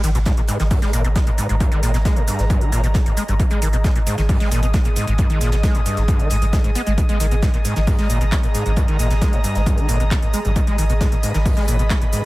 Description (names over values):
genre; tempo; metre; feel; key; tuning
driving peak-time techno; 134 BPM; 4/4; straight; G# harmonic minor; A4 = 440 Hz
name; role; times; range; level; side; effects
screaming distorted acid line; riff; 0.0-12.2 s; G#1 to B3; -23 LUFS; equal; distortion, analog chorus, sidechain pumping, dub echo
warm sub bass; bass; 0.0-12.1 s; G#1; -20 LUFS; equal; overdrive, sidechain pumping, low-pass filter
techno drum kit; drums; 0.0-12.2 s; handclaps, hi-hat, shaker; -30 LUFS; right 1 dB; small room reverb, dub echo
tight funk drum kit; drums; 0.0-12.2 s; hi-hat, snare drum; -37 LUFS; right 2 dB; none
airy breathy pad; texture; 0.0-12.3 s; G#4 to D#6; -28 LUFS; equal; chorus, sidechain pumping
electronic kick drum; drums; 0.3-12.0 s; none; -18 LUFS; equal; small room reverb
room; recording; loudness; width
little or no reverb; echo-heavy mix; -16 LUFS; side -19 dB against mid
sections
0.0-12.3 A section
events
none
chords
0.0 G#m